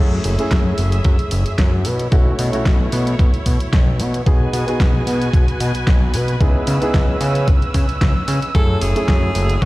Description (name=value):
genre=nu-disco, nu disco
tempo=112 BPM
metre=4/4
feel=swing 54% on 16ths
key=F# dorian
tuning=A4 = 439 Hz
part: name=warm grand piano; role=accompaniment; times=0.0-9.7 s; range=A3 to G#4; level=-24 LUFS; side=right 1 dB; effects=tape echo
part: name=clear symphonic string section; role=sustained chords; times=0.0-9.7 s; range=A3 to E6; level=-28 LUFS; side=right 1 dB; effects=sidechain pumping
part: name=fat analog bass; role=bass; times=0.0-9.7 s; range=F#1 to C#3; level=-18 LUFS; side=equal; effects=tube saturation
part: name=pop drum kit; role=drums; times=0.2-9.7 s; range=hi-hat, snare drum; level=-26 LUFS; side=left 1 dB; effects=overdrive
part: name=electronic kick drum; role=drums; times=0.5-9.7 s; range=none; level=-15 LUFS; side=equal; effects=none
part: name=bright tenor saxophone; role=melody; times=8.5-9.7 s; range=F#4 to A4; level=-24 LUFS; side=equal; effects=none
room=digital ambience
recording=played on a big sound system in a bare room, large studio reverb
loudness=-14 LUFS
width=side -19 dB against mid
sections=0.0-9.7 A section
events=none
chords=0.0 F#m9; 1.9 B9sus4; 4.3 G#m7/B; 6.4 C#m7; 8.6 F#m9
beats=0.52 1.05 1.59 | 2.12 2.66 3.19 3.73 | 4.26 4.80 5.34 5.87 | 6.41 6.94 7.48 8.02 | 8.55 9.09 9.62